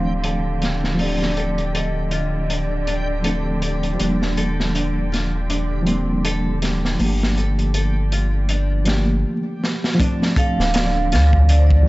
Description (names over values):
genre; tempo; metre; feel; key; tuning
trip hop; 80 BPM; 4/4; swing 57% on 16ths; D phrygian; A4 = 440 Hz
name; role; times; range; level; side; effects
vibraphone with medium mallets; melody; 0.0-3.6, 10.4-11.9 s; C5 to F5; -27 LUFS; right 2 dB; tape echo
reed electric piano; accompaniment; 0.0-11.9 s; F3 to G4; -24 LUFS; equal; harmonic tremolo, vintage 12-bit sampler grit, tape echo
muted studio string section; sustained chords; 0.0-11.9 s; D3; -30 LUFS; right 2 dB; none
nylon-string guitar; arpeggios; 0.0-11.9 s; D3 to D5; -30 LUFS; left 2 dB; low-pass filter, tape echo
round analog bass; bass; 0.0-11.8 s; D1 to D2; -20 LUFS; equal; none
backwards swelling texture; texture; 0.0-9.2 s; G4; -36 LUFS; right 2 dB; built-in reverb
crunchy breakbeat drum kit; drums; 0.2-11.9 s; hi-hat, kick drum, snare drum; -23 LUFS; equal; low-pass filter on kick, low-pass filter on hats, low-pass filter on snare, low-pass filter on room
room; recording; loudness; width
small room ambience; vinyl crackle, nothing above 7.8 kHz; -17 LUFS; side -19 dB against mid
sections
0.0-10.0 A section; 10.0-11.9 B section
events
break 9.2-10.0; drum fill 9.6-10.0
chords
0.0 Dm7; 4.0 Ebmaj7; 7.0 Gm7; 10.0 Dm7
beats
0.25 | 1.00 1.75 2.50 3.25 | 4.00 4.75 5.50 6.25 | 7.00 7.75 8.50 9.25 | 10.00 10.75 11.50